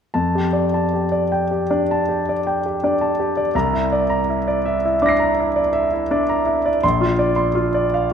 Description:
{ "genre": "classical, impressionist solo piano", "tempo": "54 BPM (dotted quarters)", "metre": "9/8", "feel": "rubato", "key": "F major", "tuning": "A4 = 441 Hz", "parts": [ { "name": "clear grand piano", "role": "solo", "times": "0.1-8.1 s", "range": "Bb1 to C7", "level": "-17 LUFS", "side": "equal", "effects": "none" } ], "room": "moderate concert hall reverb, RT60 2.0 s", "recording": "none", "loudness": "-17 LUFS", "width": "side -7 dB against mid", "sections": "0.2-8.1 A section", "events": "none", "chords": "0.2 F69; 3.5 C9; 6.8 Bbadd9" }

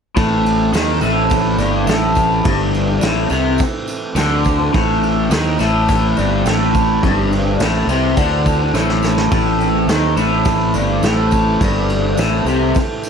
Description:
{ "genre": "psychedelic rock", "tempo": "105 BPM", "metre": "4/4", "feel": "straight", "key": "A minor", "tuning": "A4 = 440 Hz", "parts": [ { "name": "pedal harmonium", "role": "sustained chords", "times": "0.2-13.1 s", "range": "E3 to A4", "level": "-25 LUFS", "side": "right 4 dB", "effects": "none" }, { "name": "raw garage guitar", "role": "riff", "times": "0.2-12.7 s", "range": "G2 to D#3", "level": "-16 LUFS", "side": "left 1 dB", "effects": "overdrive, flanger" }, { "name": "fuzz fingered electric bass", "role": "bass", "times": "0.2-12.7 s", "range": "G1 to D#2", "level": "-19 LUFS", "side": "equal", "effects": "overdrive" }, { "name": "vintage brush drum kit", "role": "drums", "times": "0.2-13.1 s", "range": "kick drum, ride cymbal, snare drum", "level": "-21 LUFS", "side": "equal", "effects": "analog delay" }, { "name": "tambourine", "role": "percussion", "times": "0.2-13.1 s", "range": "none", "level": "-37 LUFS", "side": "right 12 dB", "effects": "analog delay" } ], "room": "light reverb", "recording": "echo-heavy mix", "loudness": "-13 LUFS", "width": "side -6 dB against mid", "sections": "0.2-13.1 A section", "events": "drum fill 8.7-9.3", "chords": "0.2 Am" }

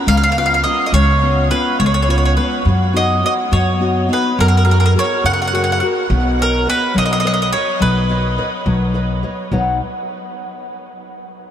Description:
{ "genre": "italian folk, Italian serenade", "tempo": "70 BPM (dotted quarters)", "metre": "6/8", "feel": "straight", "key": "B major", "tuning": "A4 = 440 Hz", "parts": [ { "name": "nylon-string guitar", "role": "accompaniment", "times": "0.0-9.8 s", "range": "B2 to F#5", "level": "-19 LUFS", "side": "left 2 dB", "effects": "none" }, { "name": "mandolin", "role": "melody", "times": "0.1-8.9 s", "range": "A#4 to F#5", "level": "-18 LUFS", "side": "right 1 dB", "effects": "diffuse ambient delay" }, { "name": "upright bass", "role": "bass", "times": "0.1-9.8 s", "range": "B1 to F#2", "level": "-17 LUFS", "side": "equal", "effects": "none" } ], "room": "moderate huge ambient reverb, RT60 9.3 s", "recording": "dreamy mix soaked in reverb", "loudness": "-13 LUFS", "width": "side -9 dB against mid", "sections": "0.0-9.5 A section; 9.5-11.2 B section", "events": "none", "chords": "0.0 C#7; 2.7 B/F#; 4.4 F#add9; 6.1 Badd9" }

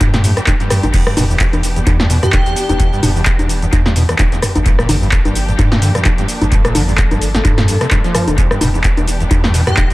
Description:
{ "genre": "acid house", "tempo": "129 BPM", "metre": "4/4", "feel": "swing 56% on 16ths", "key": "E minor pentatonic", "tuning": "A4 = 438 Hz", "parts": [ { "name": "warm symphonic string section", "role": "sustained chords", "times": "0.0-9.9 s", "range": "E3 to A4", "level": "-24 LUFS", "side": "equal", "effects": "sidechain pumping" }, { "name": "overdriven acid bass", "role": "riff", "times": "0.0-9.9 s", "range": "E1 to F3", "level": "-20 LUFS", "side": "equal", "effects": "distortion, lush chorus, sidechain pumping, dub echo" }, { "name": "warm sub bass", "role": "bass", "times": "0.0-9.9 s", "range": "D1 to G2", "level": "-18 LUFS", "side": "equal", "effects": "sidechain pumping" }, { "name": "electro analog drum machine", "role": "drums", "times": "0.0-9.9 s", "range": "congas, crash cymbal, handclaps, hi-hat, rim click, shaker, snare drum, toms", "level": "-16 LUFS", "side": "equal", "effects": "dub echo" }, { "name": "electronic kick drum", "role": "drums", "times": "0.0-9.9 s", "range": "none", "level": "-15 LUFS", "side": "equal", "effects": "none" }, { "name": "airy dreamy lead", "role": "melody", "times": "2.2-3.0, 9.7-9.8 s", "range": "G4", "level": "-22 LUFS", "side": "left 1 dB", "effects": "chorus, analog delay" } ], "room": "light reverb", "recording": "echo-heavy mix", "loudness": "-11 LUFS", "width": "side -19 dB against mid", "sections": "0.0-9.9 A section", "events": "none", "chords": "0.0 Gm7; 0.9 Em7; 4.7 Gm7; 8.4 Em7" }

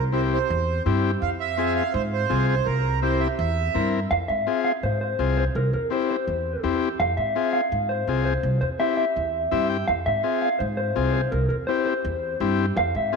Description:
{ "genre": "latin", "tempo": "166 BPM", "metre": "4/4", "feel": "straight", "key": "F harmonic minor", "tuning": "A4 = 440 Hz", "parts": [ { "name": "accordion", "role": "second line", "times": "0.0-3.9 s", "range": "Bb4 to F5", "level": "-26 LUFS", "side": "right 8 dB", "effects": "none" }, { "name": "upright bass", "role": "bass", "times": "0.0-13.1 s", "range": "C2 to Ab2", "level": "-26 LUFS", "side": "right 1 dB", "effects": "none" }, { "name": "combo organ", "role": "accompaniment", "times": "0.1-13.2 s", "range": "C4 to G5", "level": "-27 LUFS", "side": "left 7 dB", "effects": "none" }, { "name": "mellow electric guitar", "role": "melody", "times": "4.1-13.2 s", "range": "Bb4 to F5", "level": "-24 LUFS", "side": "equal", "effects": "spring reverb" } ], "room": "wet echo chamber reverb, RT60 2.4 s", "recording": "1960s-style stereo with parts hard left and right", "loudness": "-21 LUFS", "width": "side -5 dB against mid", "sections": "0.0-4.1 A section; 4.1-13.2 B section", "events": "accordion solo 0.0-4.1; transistor combo organ fill 9.3-9.9", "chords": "0.0 C; 1.2 Fm; 2.7 C7; 4.1 Fm; 5.6 C; 7.0 Fm; 8.4 C; 9.9 Fm; 11.3 C" }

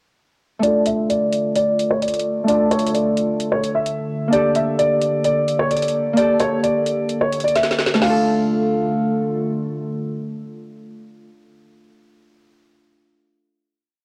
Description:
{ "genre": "hip hop, trap", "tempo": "130 BPM", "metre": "4/4", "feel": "half-time", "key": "D minor", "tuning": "A4 = 440 Hz", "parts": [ { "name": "dark grand piano", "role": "melody", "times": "0.6-9.4 s", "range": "C#5 to F5", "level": "-22 LUFS", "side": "equal", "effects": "low-pass filter" }, { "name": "Celtic harp", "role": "accompaniment", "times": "0.6-11.3 s", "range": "A3 to A4", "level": "-24 LUFS", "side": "equal", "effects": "low-pass filter" }, { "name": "warbly tape-like pad", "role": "sustained chords", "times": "1.1-11.2 s", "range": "D3 to A4", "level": "-30 LUFS", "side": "equal", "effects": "chorus, built-in reverb, low-pass filter" }, { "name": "trap drum kit", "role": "drums", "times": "0.6-8.1 s", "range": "crash cymbal, hi-hat, snare drum", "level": "-28 LUFS", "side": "equal", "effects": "cassette tape" } ], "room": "light reverb, small room ambience", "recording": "home recording on cassette", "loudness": "-19 LUFS", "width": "mono", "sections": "0.6-8.0 breakdown; 8.0-11.7 final chord", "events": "filter sweep 0.6-8.0; drum fill 7.6-8.0", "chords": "0.6 Dm; 4.3 Gmadd9; 8.0 Dm" }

